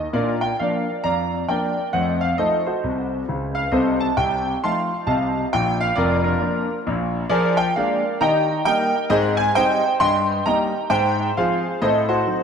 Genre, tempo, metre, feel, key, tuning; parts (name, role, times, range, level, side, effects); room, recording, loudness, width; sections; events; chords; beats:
jazz, stride piano; 134 BPM; 4/4; swing 61% on 8ths; Bb major, Eb major from 7.3 s; A4 = 439 Hz
clear concert grand piano; solo; 0.0-12.4 s; F1 to C6; -18 LUFS; equal; analog chorus, tape echo
wet lush hall reverb, RT60 2.2 s; dreamy mix soaked in reverb; -18 LUFS; side -6 dB against mid
0.1-12.4 A section
0.1 Bb; 1.9 F7b9; 3.7 F7/C; 5.5 Bb; 7.3 Bb7/F; 8.2 Eb; 9.1 Abmaj7; 10.0 Eb/G; 10.9 Fm/Ab; 11.8 Adim7
| 0.13 0.58 1.03 1.48 | 1.93 2.38 2.83 3.27 | 3.72 4.17 4.62 5.07 | 5.52 5.97 6.42 6.87 | 7.31 7.76 8.21 8.66 | 9.11 9.56 10.01 10.46 | 10.91 11.36 11.81 12.26